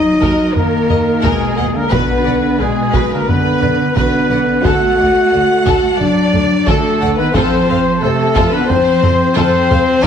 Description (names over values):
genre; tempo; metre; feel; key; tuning
cinematic, epic orchestral film score; 88 BPM; 4/4; straight; unclear; A4 = 439 Hz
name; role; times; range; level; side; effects
rich symphonic violin section; second line; 0.0-10.1 s; Ab4 to F#5; -21 LUFS; left 2 dB; none
mellow French horn section; sustained chords; 0.0-10.1 s; Ab3 to F#4; -15 LUFS; left 2 dB; none
warm trumpet; stabs; 0.0-10.1 s; Ab4 to F#5; -21 LUFS; equal; none
rich studio cello section; bass; 0.0-10.1 s; Cb3 to A3; -20 LUFS; right 3 dB; none
timpani; percussion; 0.0-0.2, 10.0-10.1 s; Eb3; -33 LUFS; left 1 dB; none
impact; sound effects; 0.0-1.9 s; none; barely audible; none; none
warm symphonic violin section; melody; 0.2-10.1 s; A4 to Gb5; -24 LUFS; left 4 dB; none
warm symphonic viola section; accompaniment; 0.2-10.1 s; F4 to Eb5; -24 LUFS; right 1 dB; none
warm studio double bass section; bass; 0.2-10.1 s; B1 to F2; -22 LUFS; right 4 dB; none
taiko ensemble; drums; 0.2-10.1 s; none; -20 LUFS; equal; none
room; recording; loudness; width
moderate scoring stage reverb, RT60 1.6 s; heavily compressed radio sound; -11 LUFS; side -8 dB against mid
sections
0.0-10.1 A section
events
impact 0.0-1.9; drum fill 9.0-10.0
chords
0.0 Ebm; 1.9 Bm; 4.6 D; 7.4 F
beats
0.56 1.24 | 1.92 2.60 3.28 3.96 | 4.65 5.33 6.00 6.67 | 7.35 8.03 8.70 9.37 | 10.04